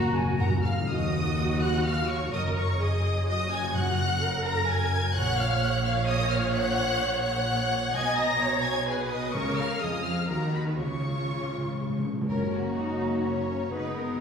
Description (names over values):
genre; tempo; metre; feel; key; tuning
classical, dramatic, fast romantic movement for symphony orchestra; 127 BPM; 3/4; rubato; Eb minor, F# major from 6.5 s; A4 = 440 Hz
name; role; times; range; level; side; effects
warm symphonic violin section; melody; 0.0-14.2 s; F#4 to Bb6; -32 LUFS; left 2 dB; none
mellow hollow small flute group; second line; 0.0-0.9, 12.3-14.2 s; E#5 to D#6; -36 LUFS; equal; none
warm symphonic violin section; second line; 0.0-14.2 s; F#4 to Bb5; -33 LUFS; left 3 dB; none
warm studio viola section; accompaniment; 0.0-14.2 s; A#3 to D#5; -31 LUFS; right 2 dB; none
mellow French horn section; sustained chords; 0.0-0.6, 12.3-14.2 s; F#3 to B3; -34 LUFS; left 2 dB; none
timpani; percussion; 0.0-0.9, 3.8-4.4, 9.3-13.0 s; F#2 to C#3; -32 LUFS; left 2 dB; none
warm studio double bass section; bass; 0.1-14.2 s; F#1 to E#2; -32 LUFS; right 2 dB; none
warm symphonic cello section; bass; 0.1-14.2 s; Eb2 to D#4; -32 LUFS; right 1 dB; none
bright clarinet; second line; 12.3-14.2 s; F#4 to G#4; -39 LUFS; left 3 dB; none
warm bassoon; accompaniment; 12.3-14.2 s; F#3 to B3; -38 LUFS; equal; none
room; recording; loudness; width
wet recital hall reverb, RT60 1.5 s; recorded in a church or concert hall; -24 LUFS; side -6 dB against mid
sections
0.9-12.3 A section; 12.3-14.2 B section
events
timpani fill 0.0-0.9, 10.8-12.3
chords
0.0 F#; 0.9 Ebm; 2.3 Ebm/Gb; 5.2 Gb/Bb; 7.9 Bmaj13; 9.4 C#; 10.3 D#m; 10.8 C#; 12.3 F#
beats
0.39 | 0.89 1.37 1.85 | 2.33 2.80 3.28 | 3.75 4.22 4.68 | 5.15 5.61 6.08 | 6.54 7.01 7.47 | 7.94 8.41 8.88 | 9.35 9.82 10.30 | 10.80 11.30 11.79 | 12.29 12.77 13.24 | 13.72 14.19